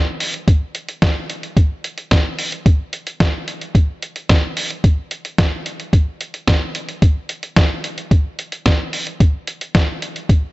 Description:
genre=pop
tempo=110 BPM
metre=4/4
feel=straight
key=none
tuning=none
part: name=lo-fi sampler-style drum kit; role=drums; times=0.2-10.4 s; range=hi-hat, kick drum, snare drum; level=-15 LUFS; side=equal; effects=none
room=light reverb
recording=dry, gritty hardware recording, transformer saturation, nothing above 7.9 kHz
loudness=-16 LUFS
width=side -20 dB against mid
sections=0.0-10.5 A section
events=none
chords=none

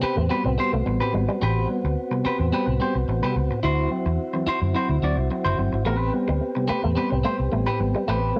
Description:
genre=funk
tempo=108 BPM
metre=4/4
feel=straight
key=A dorian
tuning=A4 = 440 Hz
part: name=clean electric guitar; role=accompaniment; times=0.0-8.3 s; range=C4 to D5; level=-29 LUFS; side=equal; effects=cassette tape
part: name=percussive tonewheel organ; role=sustained chords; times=0.0-8.4 s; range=B3 to G4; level=-31 LUFS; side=equal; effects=slow rotary speaker, cassette tape
part: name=electric guitar with an envelope filter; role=riff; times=0.0-1.4, 5.9-8.4 s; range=G3 to C4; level=-33 LUFS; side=equal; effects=lush chorus, cassette tape
part: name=vintage muted fingered electric bass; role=bass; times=0.0-8.3 s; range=F#1 to F#2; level=-27 LUFS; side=equal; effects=none
part: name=tine electric piano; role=stabs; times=0.2-8.4 s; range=A2 to C4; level=-31 LUFS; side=equal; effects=cassette tape
room=light reverb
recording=home recording on cassette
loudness=-23 LUFS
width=mono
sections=0.0-8.4 A section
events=none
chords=0.0 Am9; 3.6 D9; 5.9 Am9

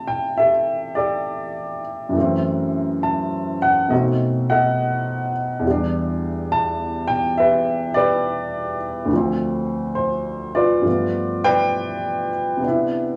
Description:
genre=solo jazz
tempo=68 BPM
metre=4/4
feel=swing 66% on 8ths, rubato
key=C major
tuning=A4 = 445 Hz
part: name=warm baby grand piano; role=solo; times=0.0-13.2 s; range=D2 to A5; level=-21 LUFS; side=equal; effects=none
room=wet small room reverb, RT60 0.5 s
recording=band playing live in one room, small room ambience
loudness=-21 LUFS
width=mono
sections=0.0-13.2 A section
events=none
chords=0.0 C69; 2.2 F#m7b5; 3.9 B7b9; 5.7 Em7; 9.1 Dm7; 10.9 G9; 12.6 Cmaj9

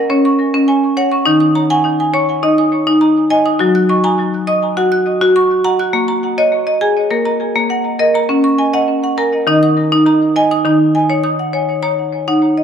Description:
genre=world meditative, meditative tuned percussion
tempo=102 BPM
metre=4/4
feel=straight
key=Eb minor pentatonic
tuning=A4 = 440 Hz
part: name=marimba with hard mallets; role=solo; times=0.0-12.6 s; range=Eb3 to Gb6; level=-11 LUFS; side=equal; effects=tape echo
room=wet spring reverb, RT60 1.6 s, small room ambience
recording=echo-heavy mix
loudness=-11 LUFS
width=side -8 dB against mid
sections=0.0-10.7 A section; 10.7-12.6 B section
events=none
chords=0.0 Db5; 1.3 Ebm; 3.6 Gb; 5.9 Bbm; 8.3 Db5; 9.5 Eb5; 10.7 Ebm

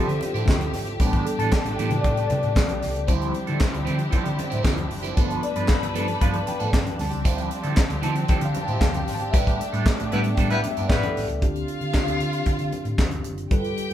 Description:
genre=disco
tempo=115 BPM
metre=4/4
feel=straight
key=D dorian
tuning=A4 = 438 Hz
part: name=electric guitar at the edge of break-up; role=accompaniment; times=0.0-11.3 s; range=E3 to B4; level=-30 LUFS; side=right 4 dB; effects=phaser
part: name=mellow tine electric piano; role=accompaniment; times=0.0-13.9 s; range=D3 to B5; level=-29 LUFS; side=left 2 dB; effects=medium stereo tremolo
part: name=rich studio string section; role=sustained chords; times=0.0-11.4 s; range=D3 to E5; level=-31 LUFS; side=left 1 dB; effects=none
part: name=hollow-body short-scale fingered electric bass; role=bass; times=0.1-13.9 s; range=F#1 to D3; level=-29 LUFS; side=equal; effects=none
part: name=tight funk drum kit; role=drums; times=0.1-13.9 s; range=handclaps, hi-hat, kick drum, snare drum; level=-23 LUFS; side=equal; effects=none
part: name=congas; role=percussion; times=0.2-13.2 s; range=none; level=-33 LUFS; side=left 2 dB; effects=none
part: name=clear horn section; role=stabs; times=10.1-11.3 s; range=G3 to B4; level=-28 LUFS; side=left 2 dB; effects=none
part: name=warm studio violin section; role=second line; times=11.4-13.9 s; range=F4 to G5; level=-31 LUFS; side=equal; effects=none
room=moderate large studio reverb, RT60 0.9 s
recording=band playing live in one room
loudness=-21 LUFS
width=side -11 dB against mid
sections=0.0-11.4 A section; 11.4-13.9 B section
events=tine electric piano solo 0.0-11.4; band accent 9.3-11.4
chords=0.0 Dm11; 1.0 A9sus4; 3.1 Dm11; 5.2 G9; 7.0 Dm11; 9.3 A9sus4; 11.4 Dm7

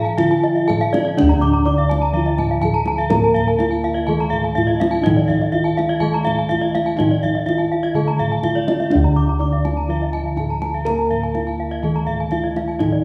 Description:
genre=Balinese gamelan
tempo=124 BPM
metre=4/4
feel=straight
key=D pelog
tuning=A4 = 439 Hz
part: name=gamelan-type bronze metallophone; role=melody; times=0.0-13.0 s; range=D4 to D5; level=-24 LUFS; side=equal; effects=none
part: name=gamelan-type bronze metallophone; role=accompaniment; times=0.0-13.0 s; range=D3 to Bb3-20c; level=-28 LUFS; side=equal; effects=none
part: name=gamelan-type bronze metallophone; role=arpeggios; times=0.0-12.9 s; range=D5 to D6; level=-27 LUFS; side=equal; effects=none
part: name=gamelan-type bronze metallophone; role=arpeggios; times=0.0-13.0 s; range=D5 to Bb5-20c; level=-28 LUFS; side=equal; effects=none
part: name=gamelan-type bossed gongs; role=bass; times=0.0-13.0 s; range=D2 to Bb4-20c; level=-23 LUFS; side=equal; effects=none
part: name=kendang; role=percussion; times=0.1-13.0 s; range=none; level=-28 LUFS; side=equal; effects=none
room=wet scoring stage reverb, RT60 1.7 s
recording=recorded in a church or concert hall, small room ambience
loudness=-18 LUFS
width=mono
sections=0.0-1.2 A section; 1.2-13.0 B section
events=none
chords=none

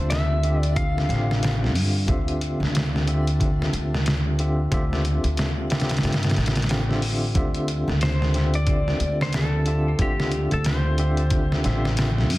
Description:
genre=trip hop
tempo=91 BPM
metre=4/4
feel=swing 59% on 16ths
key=D minor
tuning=A4 = 440 Hz
part: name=clean lap steel guitar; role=melody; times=0.0-1.7, 8.0-12.3 s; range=G4 to F5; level=-30 LUFS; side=left 1 dB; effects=tape echo
part: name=bright tine electric piano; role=accompaniment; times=0.0-12.4 s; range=D3 to F5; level=-28 LUFS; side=equal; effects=tremolo, tape echo
part: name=upright bass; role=bass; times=0.0-12.4 s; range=A1 to G2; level=-23 LUFS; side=equal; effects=none
part: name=backwards swelling texture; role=texture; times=0.0-7.4 s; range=D4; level=-44 LUFS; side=left 3 dB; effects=none
part: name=trip hop sampler-style drum kit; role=drums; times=0.1-12.4 s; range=hi-hat, kick drum, snare drum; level=-25 LUFS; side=equal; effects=none
room=digital ambience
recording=dense, heavily limited modern master, vinyl crackle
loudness=-20 LUFS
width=side -18 dB against mid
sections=0.0-7.4 A section; 7.4-12.4 A section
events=none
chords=0.0 Dm11

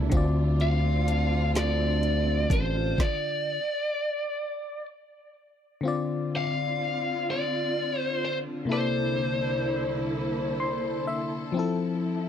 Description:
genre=slow six-eight R&B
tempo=42 BPM (dotted quarters)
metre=6/8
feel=straight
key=D minor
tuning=A4 = 440 Hz
part: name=mellow electric guitar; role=second line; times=0.0-3.6 s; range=D3 to A4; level=-34 LUFS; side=right 5 dB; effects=none
part: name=FM electric piano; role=accompaniment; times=0.0-12.3 s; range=C3 to C6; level=-30 LUFS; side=left 4 dB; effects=chorus
part: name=warm studio string section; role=sustained chords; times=0.0-12.3 s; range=C2 to A4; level=-34 LUFS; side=right 2 dB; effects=none
part: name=smooth synth bass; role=bass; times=0.0-2.9 s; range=A1 to D2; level=-26 LUFS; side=equal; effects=none
part: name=smooth R&B drum kit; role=drums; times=0.1-3.2 s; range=hi-hat, kick drum, snare drum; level=-26 LUFS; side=equal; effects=none
part: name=biting lead guitar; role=melody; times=0.6-11.0 s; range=C5 to F5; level=-29 LUFS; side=left 1 dB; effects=overdrive
room=little or no reverb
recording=dry, close 1970s-style studio recording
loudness=-25 LUFS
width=side -9 dB against mid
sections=0.0-5.8 A section; 5.8-12.3 A section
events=stop 3.0-5.8; FM electric piano fill 10.1-11.5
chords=0.1 Dm7; 3.0 N.C.; 5.8 Dm7; 8.7 C13; 11.5 Fmaj7

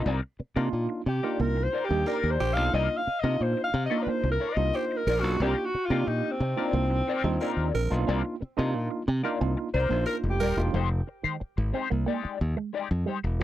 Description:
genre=funk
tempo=90 BPM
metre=4/4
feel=straight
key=C minor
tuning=A4 = 441 Hz
part: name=clean electric guitar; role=accompaniment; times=0.0-13.4 s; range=Ab3 to Eb5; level=-32 LUFS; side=left 8 dB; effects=wah
part: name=tine electric piano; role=stabs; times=0.0-10.7 s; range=Bb3 to G4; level=-32 LUFS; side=right 3 dB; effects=overdrive, fast stereo tremolo
part: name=modern bright fingered electric bass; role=bass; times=0.0-13.4 s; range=Eb1 to C3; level=-27 LUFS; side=equal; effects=none
part: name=electric guitar with an envelope filter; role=riff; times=0.1-13.4 s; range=Eb3 to C4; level=-34 LUFS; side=right 6 dB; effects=analog chorus
part: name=warm alto saxophone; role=melody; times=1.1-10.7 s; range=C4 to F5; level=-29 LUFS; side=left 1 dB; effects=tape echo
part: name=growling tenor saxophone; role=second line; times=2.1-10.6 s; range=G4 to Bb4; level=-32 LUFS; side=right 5 dB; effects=none
room=little or no reverb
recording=dry, close 1970s-style studio recording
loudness=-25 LUFS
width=side -13 dB against mid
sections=0.1-10.7 A section; 10.7-13.4 B section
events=alto saxophone solo 0.1-10.7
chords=0.1 Cm11; 10.7 Fm9

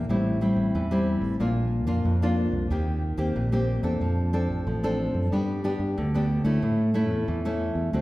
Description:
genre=samba and choro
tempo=92 BPM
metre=4/4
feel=straight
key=unclear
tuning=A4 = 440 Hz
part: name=nylon-string guitar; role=accompaniment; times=0.0-8.0 s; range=F2 to A4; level=-26 LUFS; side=left 1 dB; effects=none
part: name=fingered electric bass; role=bass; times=0.0-8.0 s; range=A1 to A2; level=-26 LUFS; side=right 1 dB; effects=none
room=wet recital hall reverb, RT60 1.7 s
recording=recorded in a church or concert hall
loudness=-23 LUFS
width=side -18 dB against mid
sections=0.0-8.0 A section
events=none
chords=0.1 Am7; 1.4 Bb; 2.7 Eb6; 4.0 Dm7; 5.3 G; 6.6 A

